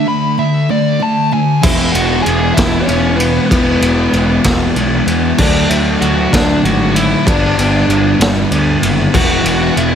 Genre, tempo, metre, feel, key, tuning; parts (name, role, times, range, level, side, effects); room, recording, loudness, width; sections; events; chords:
quiet-loud alternative rock; 64 BPM (dotted quarters); 6/8; straight; E mixolydian; A4 = 442 Hz
dark smooth lead guitar; melody; 0.0-9.9 s; B3 to B5; -17 LUFS; equal; overdrive, digital delay
picked steel-string acoustic guitar; arpeggios; 0.0-1.6 s; D3 to A3; -22 LUFS; right 9 dB
thick fuzz guitar; riff; 0.0-9.9 s; G2 to E4; -15 LUFS; left 1 dB; distortion
fuzz picked electric bass; bass; 1.6-9.9 s; E1 to E2; -17 LUFS; equal; overdrive
raw garage drum kit; drums; 1.6-9.9 s; crash cymbal, kick drum, ride cymbal, snare drum; -15 LUFS; equal
light reverb, small room ambience; -10 LUFS; side -8 dB against mid
0.0-1.6 A section; 1.6-9.9 B section
break 0.0-1.6; half time 0.0-1.6; lead electric guitar solo 0.0-1.6
0.0 D5; 1.6 E; 5.4 D; 7.3 G; 9.1 E